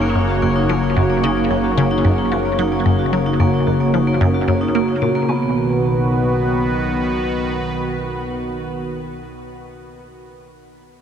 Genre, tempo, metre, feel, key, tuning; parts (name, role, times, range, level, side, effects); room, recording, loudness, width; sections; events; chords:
ambient, sequencer-driven space music; 111 BPM; 4/4; straight; B major; A4 = 439 Hz
sweeping resonant pad; sustained chords; 0.0-8.8 s; C#3 to C#5; -20 LUFS; equal; chorus
vibraphone with medium hard mallets; arpeggios; 0.0-5.5 s; A#3 to F#4; -22 LUFS; right 3 dB; auto-pan, tape echo
analog drone; bass; 0.0-6.9 s; F#1 to B1; -25 LUFS; equal; chorus
resonant blip pluck; riff; 0.2-5.5 s; F#2 to A#3; -21 LUFS; equal; phaser, tape echo
wet huge ambient reverb, RT60 7.5 s; dreamy mix soaked in reverb, cassette tape; -16 LUFS; side -8 dB against mid
0.0-5.3 A section; 5.3-9.6 B section
0.0 F#; 5.3 B